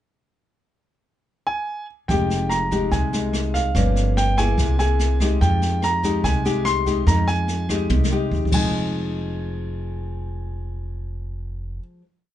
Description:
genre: bossa nova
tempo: 144 BPM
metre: 4/4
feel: straight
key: F minor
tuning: A4 = 442 Hz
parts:
  - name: warm grand piano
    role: melody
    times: 1.5-11.8 s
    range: F5 to C6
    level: -25 LUFS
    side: right 1 dB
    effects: none
  - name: nylon-string guitar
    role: accompaniment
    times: 2.1-12.1 s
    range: G2 to Ab4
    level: -24 LUFS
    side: left 3 dB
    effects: none
  - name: upright bass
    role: bass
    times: 2.1-11.8 s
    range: F1 to F2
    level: -23 LUFS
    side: equal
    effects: none
  - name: jazz brush drum kit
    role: drums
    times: 2.1-8.6 s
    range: crash cymbal, kick drum, rim click, snare drum, toms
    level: -26 LUFS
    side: equal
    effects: none
room: little or no reverb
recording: nothing above 10.4 kHz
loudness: -19 LUFS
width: side -12 dB against mid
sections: 0.4-2.1 pickup bar; 2.1-8.7 A section; 8.7-12.1 final hit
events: drum fill 7.9-8.7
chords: 0.4 N.C.; 2.1 Fm9; 3.7 Gm7b5; 4.6 C7alt; 5.4 Fm9; 8.5 Fm7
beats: | 0.43 0.84 1.26 1.67 | 2.09 2.50 2.92 3.33 | 3.75 4.16 4.58 4.99 | 5.41 5.82 6.24 6.65 | 7.07 7.49 7.90 8.32 | 8.73 9.15 9.56 9.98 | 10.39 10.81 11.22 11.64

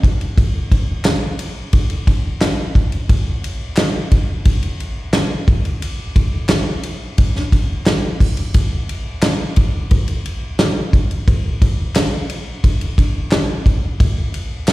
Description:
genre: pop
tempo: 88 BPM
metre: 4/4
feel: straight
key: none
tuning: none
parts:
  - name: natural country drum kit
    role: drums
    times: 0.0-14.7 s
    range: hi-hat, kick drum, ride cymbal, snare drum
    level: -15 LUFS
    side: equal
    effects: none
  - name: group handclap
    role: percussion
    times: 1.1-14.7 s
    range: none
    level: -29 LUFS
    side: left 2 dB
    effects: none
room: light reverb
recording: live gig heard through the venue's PA, recital hall reverb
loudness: -15 LUFS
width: side -18 dB against mid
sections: 0.0-14.7 A section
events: none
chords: none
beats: | 0.37 1.05 1.73 2.42 | 3.10 3.78 4.46 5.14 | 5.82 6.50 7.18 7.87 | 8.55 9.23 9.91 10.59 | 11.28 11.96 12.64 13.32 | 14.00 14.68

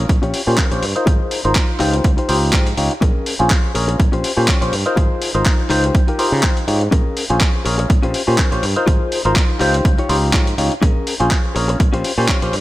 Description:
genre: filtered disco house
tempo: 123 BPM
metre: 4/4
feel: swing 55% on 16ths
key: unclear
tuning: A4 = 440 Hz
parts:
  - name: clav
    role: accompaniment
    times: 0.0-12.6 s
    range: Db4 to C6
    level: -20 LUFS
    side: equal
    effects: phaser, sidechain pumping, low-pass filter
  - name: direct-recorded clean electric guitar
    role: riff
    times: 0.0-12.6 s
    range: Db4 to Db5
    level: -24 LUFS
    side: left 3 dB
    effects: sidechain pumping, low-pass filter
  - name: modern bright fingered electric bass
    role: bass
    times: 0.0-12.6 s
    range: Ab1 to Db3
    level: -20 LUFS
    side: equal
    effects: sidechain pumping, low-pass filter
  - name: dusty soul sampler-style drum kit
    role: drums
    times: 0.1-12.6 s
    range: handclaps, hi-hat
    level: -22 LUFS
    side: equal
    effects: sidechain pumping on hats, studio reverb, sidechain pumping on cymbals
  - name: electronic kick drum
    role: drums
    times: 0.1-12.4 s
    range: none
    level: -16 LUFS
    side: equal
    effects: overdrive, studio reverb
room: light reverb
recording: none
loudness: -14 LUFS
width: side -16 dB against mid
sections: 0.0-12.6 A section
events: filter sweep 0.0-12.6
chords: 0.1 Eb13/Bb (rootless); 1.1 Ab6; 1.8 Dbmaj9#11; 3.0 Bbm7; 4.0 Eb13/Bb (rootless); 5.0 Ab6; 5.7 Dbmaj9#11; 6.9 Bbm7; 7.9 Eb13/Bb (rootless); 8.9 Ab6; 9.6 Dbmaj9#11; 10.8 Bbm7; 11.8 Eb13/Bb (rootless)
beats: 0.09 0.58 | 1.07 1.56 2.04 2.53 | 3.02 3.51 4.00 4.48 | 4.97 5.46 5.95 6.43 | 6.92 7.41 7.90 8.39 | 8.87 9.36 9.85 10.34 | 10.82 11.31 11.80 12.29

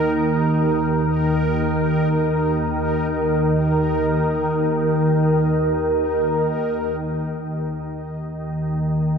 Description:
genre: ambient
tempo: free time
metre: none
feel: none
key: unclear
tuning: A4 = 440 Hz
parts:
  - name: organ-like drone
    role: drone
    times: 0.0-9.2 s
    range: Eb2 to Eb3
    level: -20 LUFS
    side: equal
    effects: ensemble chorus, built-in reverb
  - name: bubbling stepped-filter texture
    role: texture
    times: 0.0-9.2 s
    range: Bb4 to Eb5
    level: -23 LUFS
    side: equal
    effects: chorus, built-in reverb
room: wet cathedral reverb, RT60 5.3 s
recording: dark, warm production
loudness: -18 LUFS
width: side -6 dB against mid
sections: 0.0-7.0 A section; 7.0-9.2 B section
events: none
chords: 0.0 Eb5; 7.0 N.C.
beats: free time

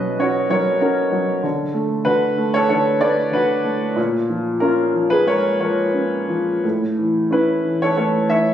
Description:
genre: classical, lyrical solo piano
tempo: 86-98 BPM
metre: 4/4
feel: rubato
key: unclear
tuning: A4 = 439 Hz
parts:
  - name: clear baby grand piano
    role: solo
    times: 0.0-8.5 s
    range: A2 to E5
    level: -16 LUFS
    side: equal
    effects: none
room: light reverb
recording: recorded on a phone in the room, studio reverb, compression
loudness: -16 LUFS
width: side -10 dB against mid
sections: 0.0-8.5 A section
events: none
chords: 0.0 Bsus2; 1.4 D6; 4.0 A#m7; 6.6 A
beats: 0.20 0.82 | 1.44 2.06 2.70 3.34 | 3.98 4.62 5.28 5.95 | 6.64 7.32 7.97

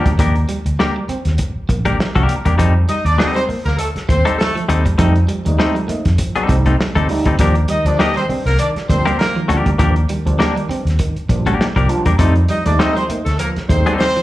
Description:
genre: funk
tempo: 100 BPM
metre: 4/4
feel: swing 56% on 16ths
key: unclear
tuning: A4 = 440 Hz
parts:
  - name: semi-hollow electric guitar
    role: accompaniment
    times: 0.0-14.1 s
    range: G3 to Bb4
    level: -20 LUFS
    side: left 3 dB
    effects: slapback echo
  - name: overdriven tine electric piano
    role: stabs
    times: 0.0, 5.0-13.9 s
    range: Eb3 to Eb4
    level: -22 LUFS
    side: right 2 dB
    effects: phaser, slapback echo
  - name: vintage muted fingered electric bass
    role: bass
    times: 0.0-13.8 s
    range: Bb1 to F2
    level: -16 LUFS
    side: equal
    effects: none
  - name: electric guitar at the edge of break-up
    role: riff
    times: 0.1-14.2 s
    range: F3 to C4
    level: -26 LUFS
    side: right 4 dB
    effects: slapback echo
  - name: warm soul drum kit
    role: drums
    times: 0.1-14.2 s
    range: hi-hat, kick drum, snare drum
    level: -20 LUFS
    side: equal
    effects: none
  - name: warm horn section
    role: second line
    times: 2.9-14.2 s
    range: A3 to Eb5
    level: -20 LUFS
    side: equal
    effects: slapback echo
room: small room ambience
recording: live gig heard through the venue's PA, club reverb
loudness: -14 LUFS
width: side -16 dB against mid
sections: 0.0-14.2 A section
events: none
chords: 0.0 Ebmaj7; 2.6 F9; 7.4 Ebmaj7; 12.2 F9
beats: | 0.19 0.79 1.39 1.99 | 2.59 3.19 3.79 4.39 | 4.99 5.59 6.19 6.79 | 7.39 7.99 8.59 9.19 | 9.79 10.39 10.99 11.59 | 12.19 12.79 13.39 13.99

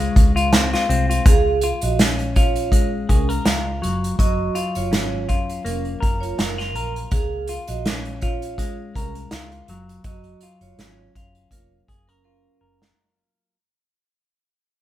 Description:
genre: indie pop, bedroom pop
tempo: 82 BPM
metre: 4/4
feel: swing 55% on 16ths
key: Db major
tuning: A4 = 439 Hz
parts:
  - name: electric guitar through a small old amp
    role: melody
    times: 0.0-0.5 s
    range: Db5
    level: -46 LUFS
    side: right 2 dB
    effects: none
  - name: semi-hollow electric guitar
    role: accompaniment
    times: 0.0-13.6 s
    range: Gb3 to Bb4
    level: -26 LUFS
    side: left 3 dB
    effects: warbly pitch drift
  - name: vintage muted fingered electric bass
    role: bass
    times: 0.0-12.9 s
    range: F1 to Db2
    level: -26 LUFS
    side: equal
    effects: none
  - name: unplugged drum kit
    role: drums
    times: 0.2-13.0 s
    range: hi-hat, kick drum, snare drum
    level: -19 LUFS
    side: equal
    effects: none
  - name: vibraphone with medium hard mallets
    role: second line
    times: 1.3-12.8 s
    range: Db4 to F5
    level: -27 LUFS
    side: right 6 dB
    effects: none
room: light reverb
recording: band playing live in one room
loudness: -18 LUFS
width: side -13 dB against mid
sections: 0.0-1.2 A section; 1.2-13.0 B section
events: fade-out 1.2-13.0; drum fill 12.2-13.0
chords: 0.0 Dbmaj7; 1.2 Db6; 3.8 Gbmaj7; 7.1 Db6; 9.7 Gbmaj7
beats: 0.52 | 1.25 1.98 2.72 3.45 | 4.18 4.92 5.65 6.38 | 7.12 7.85 8.58 9.31 | 10.05 10.78 11.51 12.24

